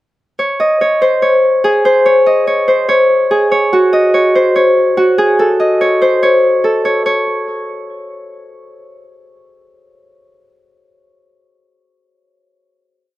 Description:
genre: hip hop, drill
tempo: 144 BPM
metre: 4/4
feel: half-time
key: unclear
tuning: A4 = 440 Hz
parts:
  - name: Celtic harp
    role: solo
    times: 0.4-9.0 s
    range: F#4 to D#5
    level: -10 LUFS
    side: equal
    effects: analog delay
room: moderate spring reverb, RT60 1.4 s, small room ambience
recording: echo-heavy mix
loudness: -10 LUFS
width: side -16 dB against mid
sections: 0.4-7.1 breakdown; 7.1-10.4 final note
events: none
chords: none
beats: | 0.39 0.81 1.23 1.64 | 2.06 2.48 2.89 3.31 | 3.73 4.14 4.56 4.97 | 5.39 5.81 6.22 6.64 | 7.06 7.47 7.89 8.31 | 8.72

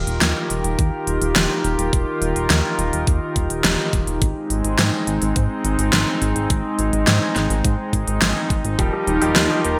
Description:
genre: synthwave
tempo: 105 BPM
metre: 4/4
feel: straight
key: Ab major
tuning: A4 = 441 Hz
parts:
  - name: chorused pulse-width pad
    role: sustained chords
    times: 0.0-9.8 s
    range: Eb3 to Bb4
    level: -25 LUFS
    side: equal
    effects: sidechain pumping
  - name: chorused synth bass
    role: bass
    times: 0.0-9.8 s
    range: Eb1 to Ab2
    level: -25 LUFS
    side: equal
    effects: sidechain pumping
  - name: pop drum kit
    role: drums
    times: 0.1-9.8 s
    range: hi-hat, snare drum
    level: -23 LUFS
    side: equal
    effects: gated reverb
  - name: electronic kick drum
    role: drums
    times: 0.8-8.9 s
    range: none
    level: -23 LUFS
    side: equal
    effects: none
  - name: clear grand piano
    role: stabs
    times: 8.8-9.7 s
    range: F3 to G4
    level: -24 LUFS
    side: equal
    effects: none
  - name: mellow synth brass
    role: melody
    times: 9.1-9.8 s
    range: Eb4 to Bb4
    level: -24 LUFS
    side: equal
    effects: chorus
room: moderate plate reverb, RT60 1.3 s, digital ambience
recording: bright 1980s-style digital production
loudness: -20 LUFS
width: mono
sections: 0.0-9.8 A section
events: none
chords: 0.0 Ebadd9; 4.2 Ab; 8.8 Ebadd9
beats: 0.22 0.79 1.36 | 1.93 2.50 3.07 3.64 | 4.22 4.79 5.36 5.93 | 6.50 7.07 7.64 8.22 | 8.79 9.36

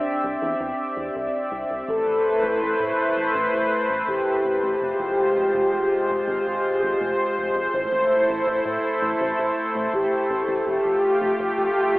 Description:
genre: synthwave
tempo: 82 BPM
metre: 4/4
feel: straight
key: unclear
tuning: A4 = 440 Hz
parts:
  - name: expressive synth lead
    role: melody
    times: 0.0-12.0 s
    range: D4 to C5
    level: -23 LUFS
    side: equal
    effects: lush chorus, shimmer reverb, tape echo
  - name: warm analog pad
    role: sustained chords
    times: 0.0-12.0 s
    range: Ab3 to E5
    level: -23 LUFS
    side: equal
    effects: chorus, shimmer reverb
  - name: chorused synth bass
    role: bass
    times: 0.2-12.0 s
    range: F1 to A2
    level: -36 LUFS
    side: equal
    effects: none
room: wet lush hall reverb, RT60 2.4 s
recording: telephone sound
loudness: -20 LUFS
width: side -20 dB against mid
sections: 0.0-1.9 A section; 1.9-12.0 B section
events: none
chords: 0.0 Cadd9; 1.9 Amadd9; 4.8 Fm; 7.7 Am; 10.7 Fadd9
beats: 0.42 1.15 | 1.89 2.62 3.35 4.08 | 4.81 5.54 6.28 7.01 | 7.74 8.47 9.20 9.93 | 10.67 11.40

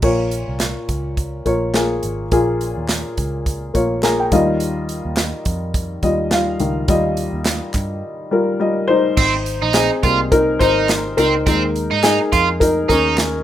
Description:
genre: piano-driven pop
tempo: 105 BPM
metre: 4/4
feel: swing 56% on 16ths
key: unclear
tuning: A4 = 438 Hz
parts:
  - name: dark upright piano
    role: accompaniment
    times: 0.0-13.4 s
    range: Bb2 to Bb5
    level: -18 LUFS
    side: left 2 dB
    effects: none
  - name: vintage muted fingered electric bass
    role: bass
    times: 0.0-13.4 s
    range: Ab1 to Ab2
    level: -25 LUFS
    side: right 1 dB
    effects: none
  - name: natural country drum kit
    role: drums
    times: 0.0-13.3 s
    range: crash cymbal, hi-hat, kick drum, snare drum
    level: -21 LUFS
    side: right 1 dB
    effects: none
  - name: group handclap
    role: percussion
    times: 0.6-13.3 s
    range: none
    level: -31 LUFS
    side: left 2 dB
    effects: none
  - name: overdriven electric guitar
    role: riff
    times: 9.2-13.2 s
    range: C4 to F4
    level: -18 LUFS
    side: right 6 dB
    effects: none
room: light reverb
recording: rough home demo mix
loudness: -15 LUFS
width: side -11 dB against mid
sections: 0.0-9.2 A section; 9.2-13.4 B section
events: upright piano fill 3.7-4.6; upright piano solo 9.2-13.4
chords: 0.0 Bbm; 4.3 Ebadd9; 9.2 Abmaj7; 11.5 Ebsus4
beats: | 0.03 0.60 1.17 1.75 | 2.32 2.89 3.46 4.03 | 4.61 5.18 5.75 6.32 | 6.89 7.46 8.04 8.61 | 9.18 9.75 10.32 10.89 | 11.46 12.04 12.61 13.18

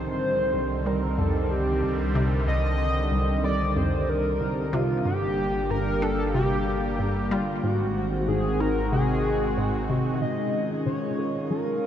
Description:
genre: ambient, sequencer-driven space music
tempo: 93 BPM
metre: 4/4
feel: straight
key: unclear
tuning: A4 = 440 Hz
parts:
  - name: pulse-width lead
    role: melody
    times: 0.0-11.9 s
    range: F4 to Eb5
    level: -28 LUFS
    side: equal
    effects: chorus, shimmer reverb, tape echo
  - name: sweeping resonant pad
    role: sustained chords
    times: 0.0-11.9 s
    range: D3 to G4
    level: -28 LUFS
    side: right 1 dB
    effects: lush chorus, shimmer reverb
  - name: resonant blip pluck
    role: riff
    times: 0.0-11.6 s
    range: C2 to Ab4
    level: -30 LUFS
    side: left 1 dB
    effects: chorus, tape echo
  - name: warm sub bass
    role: bass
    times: 0.0-10.2 s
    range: G1 to C2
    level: -30 LUFS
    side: equal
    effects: none
room: wet cathedral reverb, RT60 5.1 s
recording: in a vast, echoing space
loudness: -23 LUFS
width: side -10 dB against mid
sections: 0.0-10.2 A section; 10.2-11.9 B section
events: none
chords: 0.0 Cmadd9; 5.1 Gm; 7.6 Ab7; 10.2 Dbadd9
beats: 0.54 1.18 1.83 | 2.48 3.12 3.77 4.41 | 5.05 5.70 6.35 6.99 | 7.64 8.28 8.93 9.57 | 10.22 10.86 11.51

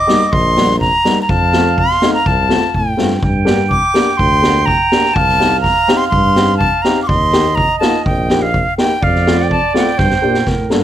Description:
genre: klezmer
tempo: 124 BPM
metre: 4/4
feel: straight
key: G minor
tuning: A4 = 440 Hz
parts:
  - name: silver concert flute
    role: melody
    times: 0.0-10.7 s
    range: F5 to D6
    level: -15 LUFS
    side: left 1 dB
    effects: none
  - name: warm clarinet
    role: second line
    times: 0.0-10.8 s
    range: Bb4 to G5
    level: -20 LUFS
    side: right 7 dB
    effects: none
  - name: dark upright piano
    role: accompaniment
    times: 0.1-10.8 s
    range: G3 to A4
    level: -18 LUFS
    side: left 2 dB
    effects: none
  - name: street-band drum kit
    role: drums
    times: 0.1-10.8 s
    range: kick drum, snare drum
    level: -17 LUFS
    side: equal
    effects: none
  - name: mellow tuba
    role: bass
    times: 0.3-10.8 s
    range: Bb1 to Bb2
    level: -18 LUFS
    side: equal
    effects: none
room: little or no reverb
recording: close, detailed microphones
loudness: -11 LUFS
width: side -11 dB against mid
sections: 0.0-10.8 A section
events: drum fill 10.0-10.8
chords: 0.0 Eb; 1.3 F; 3.2 Gm; 5.2 Cm; 7.1 Eb; 9.0 F; 10.0 Gm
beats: 0.32 0.81 | 1.29 1.77 2.26 2.74 | 3.22 3.71 4.19 4.67 | 5.16 5.64 6.12 6.60 | 7.09 7.57 8.05 8.54 | 9.02 9.50 9.98 10.47

